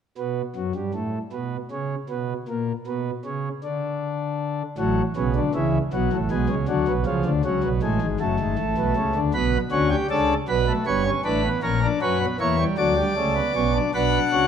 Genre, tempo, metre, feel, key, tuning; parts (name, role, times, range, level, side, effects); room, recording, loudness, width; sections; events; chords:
classical, baroque-style 4-part fugue for pipe organ; 52 BPM (dotted quarters); 6/8; straight; B minor; A4 = 439 Hz
pipe organ, principal chorus; solo; 0.2-14.5 s; F#1 to F#5; -21 LUFS; equal
wet recital hall reverb, RT60 1.7 s; -21 LUFS; side -8 dB against mid
0.2-13.9 A section
0.2 N.C.; 4.8 F#m/A; 5.9 Bm; 7.1 C#7; 8.2 F#m; 9.3 Bm; 10.5 Gadd9; 11.6 F#7/A#; 12.8 Bm